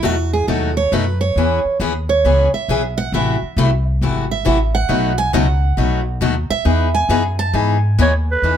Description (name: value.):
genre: acoustic string swing (jazz manouche).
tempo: 136 BPM.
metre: 4/4.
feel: swing 65% on 8ths.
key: E major.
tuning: A4 = 440 Hz.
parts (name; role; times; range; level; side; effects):
picked steel-string acoustic guitar; second line; 0.0-8.3 s; F#4 to A5; -20 LUFS; right 4 dB; none.
picked steel-string acoustic guitar; accompaniment; 0.0-8.6 s; B2 to G#4; -19 LUFS; left 5 dB; none.
upright bass; bass; 0.0-8.6 s; G#1 to G#2; -18 LUFS; equal; none.
growling clarinet; melody; 8.0-8.6 s; B4 to C#5; -17 LUFS; right 3 dB; none.
room: light reverb.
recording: none.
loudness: -14 LUFS.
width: side -9 dB against mid.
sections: 0.0-8.4 A section.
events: steel-string acoustic guitar solo 0.0-8.4.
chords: 0.0 B7; 1.4 E6; 3.1 Am6; 4.9 B7; 6.7 Emaj7.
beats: 0.03 0.47 0.92 | 1.36 1.80 2.25 2.69 | 3.13 3.57 4.02 4.46 | 4.90 5.34 5.78 6.22 | 6.67 7.11 7.55 7.99 | 8.43.